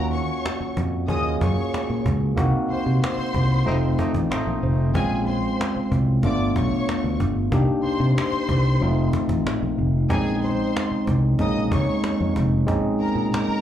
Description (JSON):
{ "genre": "lush 1970s-style soul", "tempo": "93 BPM", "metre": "4/4", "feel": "straight", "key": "Bb minor", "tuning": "A4 = 440 Hz", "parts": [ { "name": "warm studio string section", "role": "second line", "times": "0.0-13.6 s", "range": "Ab4 to Eb6", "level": "-30 LUFS", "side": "left 1 dB", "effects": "slapback echo" }, { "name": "barky tine electric piano", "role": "accompaniment", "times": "0.0-13.6 s", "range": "Gb3 to C6", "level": "-24 LUFS", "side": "left 1 dB", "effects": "overdrive, slapback echo" }, { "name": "fingered electric bass", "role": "bass", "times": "0.0-13.5 s", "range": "F1 to C3", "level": "-22 LUFS", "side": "equal", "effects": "none" }, { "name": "cajon", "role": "drums", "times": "0.1-13.5 s", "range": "none", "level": "-28 LUFS", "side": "equal", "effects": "slapback echo" }, { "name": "clear horn section", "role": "stabs", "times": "3.7-4.9 s", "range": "A3 to Eb4", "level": "-31 LUFS", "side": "right 2 dB", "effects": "slapback echo" } ], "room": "small room ambience", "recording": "live gig heard through the venue's PA, club reverb", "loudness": "-20 LUFS", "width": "side -10 dB against mid", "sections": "0.0-13.6 A section", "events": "band accent 2.4-5.0; tine electric piano fill 4.0-5.0", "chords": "0.0 Ebm9; 2.4 Cm7b5; 3.7 F7; 5.0 Bbm7; 6.2 G7; 7.5 Cm7; 8.8 F7; 10.1 Bbm11" }